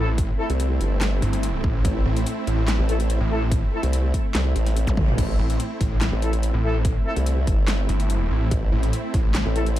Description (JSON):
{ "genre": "heavy wobble dubstep", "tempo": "144 BPM", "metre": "4/4", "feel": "half-time", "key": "A minor", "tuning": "A4 = 440 Hz", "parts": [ { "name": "supersaw pad", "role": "sustained chords", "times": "0.0-9.8 s", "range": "A3 to E4", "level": "-29 LUFS", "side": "right 1 dB", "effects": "sidechain pumping" }, { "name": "mellow brass ensemble", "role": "stabs", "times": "0.0-9.6 s", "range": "A3 to A4", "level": "-30 LUFS", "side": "left 3 dB", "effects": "dub echo" }, { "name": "snarling distorted saw bass", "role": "bass", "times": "0.0-9.4 s", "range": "G1 to A1", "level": "-23 LUFS", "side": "equal", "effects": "distortion, overdrive" }, { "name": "dubstep drum kit", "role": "drums", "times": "0.2-9.8 s", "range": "crash cymbal, handclaps, hi-hat, snare drum, toms", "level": "-29 LUFS", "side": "equal", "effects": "studio reverb" }, { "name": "electronic kick drum", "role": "drums", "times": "0.2-9.2 s", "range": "none", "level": "-23 LUFS", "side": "equal", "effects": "studio reverb" }, { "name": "formant-sweep wobble bass", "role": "bass", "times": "0.5-9.8 s", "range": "G1 to C2", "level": "-22 LUFS", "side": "equal", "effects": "chorus, overdrive" }, { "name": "zap", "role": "sound effects", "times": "4.9-5.0 s", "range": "none", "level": "-34 LUFS", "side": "equal", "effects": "none" } ], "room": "little or no reverb", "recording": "dark, warm production", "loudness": "-20 LUFS", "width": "side -13 dB against mid", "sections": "0.0-5.2 A section; 5.2-9.8 A section", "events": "drop 0.0-5.2, 5.2-9.8; drum fill 4.9-5.2", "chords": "0.0 Am", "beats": "| 0.18 0.60 1.01 1.43 | 1.85 2.26 2.68 3.10 | 3.51 3.93 4.35 4.76 | 5.18 5.60 6.01 6.43 | 6.85 7.26 7.68 8.10 | 8.51 8.93 9.35 9.76" }